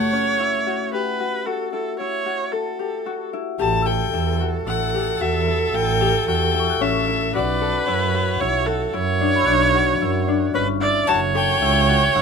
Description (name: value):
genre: contemporary instrumental, chamber music in an uneven meter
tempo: 112 BPM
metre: 7/4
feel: straight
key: unclear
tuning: A4 = 444 Hz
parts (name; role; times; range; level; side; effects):
- clear violin; melody; 0.0-12.2 s; C#5 to A5; -23 LUFS; left 7 dB; none
- clear viola; second line; 0.0-12.2 s; A4 to D5; -22 LUFS; right 4 dB; none
- Celtic harp; arpeggios; 0.0-12.2 s; A3 to A4; -24 LUFS; left 8 dB; none
- warm double bass; bass; 3.6-12.2 s; F#1 to F#2; -24 LUFS; right 4 dB; none
- celesta; texture; 3.8-10.4 s; B5 to F#6; -32 LUFS; left 4 dB; none
room: light reverb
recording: none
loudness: -18 LUFS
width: side -6 dB against mid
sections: 0.0-3.6 A section; 3.6-12.2 B section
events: break 0.0-3.6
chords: 0.0 A7; 7.3 Bm9; 11.1 F#m7